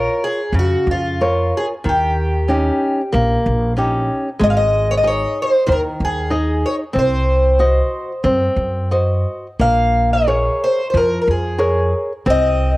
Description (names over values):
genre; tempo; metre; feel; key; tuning
fado-style ballad; 92 BPM; 4/4; uneven beats, rubato; Bb minor; A4 = 442 Hz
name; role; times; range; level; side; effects
fingerpicked twelve-string acoustic guitar; melody; 0.0-12.8 s; F4 to F5; -18 LUFS; equal; none
flamenco guitar; accompaniment; 0.0-12.8 s; Db3 to Eb5; -19 LUFS; equal; cassette tape
upright bass; bass; 0.0-12.8 s; Ab1 to Gb2; -19 LUFS; equal; none
room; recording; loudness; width
light reverb, small room ambience; home recording on cassette; -15 LUFS; side -18 dB against mid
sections
0.0-12.8 A section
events
none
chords
0.0 Bbm; 1.9 Eb7; 4.4 Ab5; 7.0 Cdim; 9.6 Bbm7; 12.3 Cm